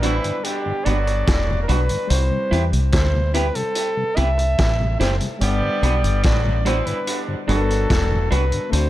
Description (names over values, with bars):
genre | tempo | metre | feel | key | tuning
lovers rock reggae | 72 BPM | 4/4 | straight | G major | A4 = 444 Hz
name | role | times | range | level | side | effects
warm flugelhorn | melody | 0.0-8.9 s | G4 to E5 | -24 LUFS | equal | tape echo
clear horn section | second line | 0.0-8.3 s | B2 to G4 | -29 LUFS | right 2 dB | tape echo
mellow tonewheel organ | accompaniment | 0.0-8.6 s | G2 to F#4 | -30 LUFS | left 2 dB | chorus vibrato
tine electric piano | accompaniment | 0.0-8.9 s | G3 to F#5 | -30 LUFS | left 3 dB | medium stereo tremolo
electric guitar through a small old amp | stabs | 0.0-8.4 s | D4 to B4 | -28 LUFS | right 4 dB | tape echo
deep dub fingered electric bass | bass | 0.0-8.9 s | E1 to E2 | -20 LUFS | equal | none
vintage drum kit | drums | 0.0-8.9 s | hi-hat, kick drum, snare drum | -24 LUFS | equal | none
room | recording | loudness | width
light reverb, small room reverb | none | -17 LUFS | side -14 dB against mid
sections
0.0-8.9 A section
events
none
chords
0.0 Gmaj7; 2.1 Cmaj7; 5.4 Gmaj7